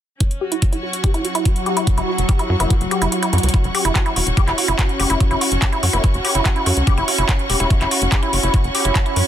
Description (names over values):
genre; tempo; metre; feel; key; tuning
psychedelic trance; 144 BPM; 4/4; straight; unclear; A4 = 440 Hz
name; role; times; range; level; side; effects
evolving wavetable pad; sustained chords; 0.8-9.3 s; F#3 to F#4; -26 LUFS; equal; chorus, built-in reverb, sidechain pumping
woody wave-folded pluck; riff; 0.2-9.2 s; E4 to G4; -22 LUFS; moving between left 3 dB and right 5 dB; chorus, auto-pan, cassette tape, sidechain pumping, digital delay
drum and bass drum kit; drums; 0.2-9.2 s; handclaps, hi-hat; -23 LUFS; equal; none
electronic kick drum; drums; 0.2-9.0 s; none; -17 LUFS; equal; none
clear symphonic string section; texture; 0.2-9.3 s; C#4 to C#6; -25 LUFS; left 1 dB; sidechain pumping
tight sequencer bass; bass; 2.0-9.2 s; E1 to F#2; -20 LUFS; equal; none
vowel-sweep wobble bass; second line; 2.6-6.8 s; F#3 to A#3; -37 LUFS; left 3 dB; none
room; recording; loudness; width
digital ambience; dense, heavily limited modern master; -15 LUFS; side -10 dB against mid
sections
0.2-3.5 A section; 3.5-9.3 B section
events
filter sweep on synth arpeggio sound 0.2-3.5; kick drops out 3.1-3.5; drum fill 3.3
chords
0.2 F#5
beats
| 0.20 0.62 1.04 1.46 | 1.87 2.29 2.71 3.12 | 3.54 3.96 4.37 4.79 | 5.21 5.62 6.04 6.46 | 6.87 7.29 7.71 8.12 | 8.54 8.96